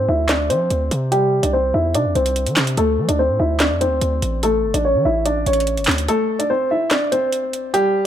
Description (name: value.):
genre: hip hop, drill.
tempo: 145 BPM.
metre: 4/4.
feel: half-time.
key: D minor.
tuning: A4 = 440 Hz.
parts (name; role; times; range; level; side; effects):
dark baby grand piano; melody; 0.0-8.0 s; G3 to E5; -18 LUFS; equal; low-pass filter, digital delay.
hard-hitting 808-style bass; bass; 0.0-6.1 s; G1 to F3; -21 LUFS; right 1 dB; none.
drill drum kit; drums; 0.3-7.8 s; handclaps, hi-hat, snare drum; -21 LUFS; right 1 dB; none.
room: digital ambience.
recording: faint mains hum.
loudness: -16 LUFS.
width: side -10 dB against mid.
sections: 0.0-8.1 A section.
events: filter sweep on grand piano 0.0-6.1; kick muted 6.1-8.1.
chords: 0.0 Dm7; 1.1 C; 2.8 Dm7; 4.4 A; 6.1 D5.